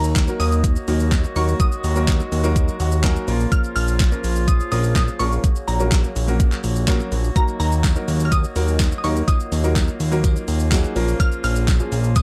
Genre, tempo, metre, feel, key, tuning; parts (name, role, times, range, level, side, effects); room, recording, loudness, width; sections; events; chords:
dance-pop; 125 BPM; 4/4; straight; Eb minor; A4 = 440 Hz
glassy wavetable pluck; melody; 0.0-12.2 s; Bb5 to F6; -30 LUFS; equal; chorus, tape echo
warm woodwind section; sustained chords; 0.0-12.2 s; Db3 to Gb4; -32 LUFS; equal; sidechain pumping
fat analog bass; bass; 0.0-12.2 s; Bb1 to Eb2; -22 LUFS; equal; sidechain pumping
pop drum kit; drums; 0.0-12.2 s; handclaps, hi-hat, kick drum, shaker, snare drum; -23 LUFS; equal; overdrive
warm baby grand piano; accompaniment; 0.3-12.1 s; F3 to Bb5; -29 LUFS; equal; sidechain pumping
tambourine; percussion; 7.6-12.2 s; -40 LUFS; equal
little or no reverb; dark, warm production; -19 LUFS; mono
0.0-12.2 A section
grand piano fill 2.6-3.5
0.0 Ebm; 3.3 Bbm; 5.4 Gb/Bb; 7.4 Ebm; 11.0 Bbm